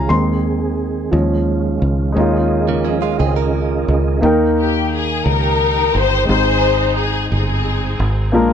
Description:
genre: gospel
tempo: 58 BPM (dotted quarters)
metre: 6/8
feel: straight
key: unclear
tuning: A4 = 439 Hz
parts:
  - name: warm grand piano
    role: accompaniment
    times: 0.0-8.5 s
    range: Ab2 to C6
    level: -19 LUFS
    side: left 1 dB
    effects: none
  - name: mellow tonewheel organ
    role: sustained chords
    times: 0.0-4.2 s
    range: Eb3 to Eb5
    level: -22 LUFS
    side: right 4 dB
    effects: slow rotary speaker, chorus vibrato
  - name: fingered electric bass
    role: bass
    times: 0.0-8.5 s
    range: G1 to Eb2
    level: -18 LUFS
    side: right 1 dB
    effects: none
  - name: direct-recorded clean electric guitar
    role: second line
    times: 2.7-4.2 s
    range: Db3 to Bb4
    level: -22 LUFS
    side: right 10 dB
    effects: spring reverb
  - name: warm studio string section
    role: melody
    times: 4.6-8.3 s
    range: C4 to C5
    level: -17 LUFS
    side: left 4 dB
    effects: tape echo
room: light reverb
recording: none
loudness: -14 LUFS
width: side -8 dB against mid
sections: 0.0-2.2 A section; 2.2-4.2 B section; 4.2-8.5 C section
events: grand piano solo 0.0-2.2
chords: 0.1 Ab/Eb; 1.1 Eb9sus4; 4.2 Eb; 6.3 Ab

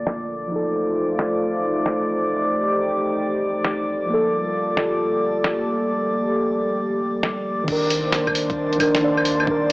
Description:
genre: future garage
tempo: 134 BPM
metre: 4/4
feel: swing 66% on 16ths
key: C dorian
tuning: A4 = 440 Hz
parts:
  - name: muted felt-like synth keys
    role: accompaniment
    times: 0.0-9.7 s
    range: D3 to D5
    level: -24 LUFS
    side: equal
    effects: chorus, sidechain pumping, cassette tape, tape echo
  - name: dark analog pad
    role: sustained chords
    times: 0.0-9.7 s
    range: Eb3 to D5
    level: -24 LUFS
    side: equal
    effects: chorus, sidechain pumping, cassette tape
  - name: soft dub sub bass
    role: bass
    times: 0.0-9.7 s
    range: G1 to Eb2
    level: -45 LUFS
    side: equal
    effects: sidechain pumping
  - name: drifting glass-harmonics texture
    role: texture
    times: 0.0-9.7 s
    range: D5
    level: -26 LUFS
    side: equal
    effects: chorus, built-in reverb, cassette tape
  - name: lo-fi sampler-style drum kit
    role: drums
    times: 0.1-9.7 s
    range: claves, crash cymbal, hi-hat, snare drum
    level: -23 LUFS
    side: equal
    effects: low-pass filter on snare, studio reverb, cassette tape, low-pass filter on cymbals, low-pass filter on hats, low-pass filter on perc
  - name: electronic kick drum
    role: drums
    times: 7.7-9.6 s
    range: none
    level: -29 LUFS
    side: equal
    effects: studio reverb, cassette tape
room: moderate lush hall reverb, RT60 1.6 s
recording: home recording on cassette, low-pass filter, small speaker sound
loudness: -19 LUFS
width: side -23 dB against mid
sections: 0.0-7.7 A section; 7.7-9.7 B section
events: filter sweep 0.0-7.7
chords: 0.0 Bbmaj7; 0.5 F7/A; 4.1 Gm9; 7.7 Cm9

